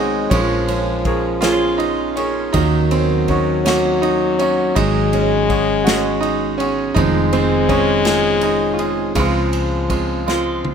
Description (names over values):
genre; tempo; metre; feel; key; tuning
acoustic folk-pop ballad; 54 BPM (dotted quarters); 6/8; straight; Eb dorian; A4 = 437 Hz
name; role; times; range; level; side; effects
bright baby grand piano; melody; 0.0-10.7 s; Db3 to Db5; -20 LUFS; right 3 dB; none
mellow French horn; second line; 0.0-10.7 s; F3 to Ab3; -20 LUFS; left 5 dB; none
picked steel-string acoustic guitar; arpeggios; 0.0-10.7 s; Eb3 to Gb4; -22 LUFS; right 5 dB; none
woody fretless electric bass; bass; 0.0-10.7 s; F1 to Eb2; -24 LUFS; equal; none
unplugged drum kit; drums; 0.3-10.7 s; kick drum, ride cymbal, snare drum, toms; -25 LUFS; equal; none
room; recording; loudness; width
little or no reverb; none; -15 LUFS; side -7 dB against mid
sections
0.0-10.7 A section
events
drum fill 10.3-10.7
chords
0.3 Bbm7; 2.5 Ebm7; 4.8 Ab7sus4; 7.0 Fm7; 9.2 Dbmaj7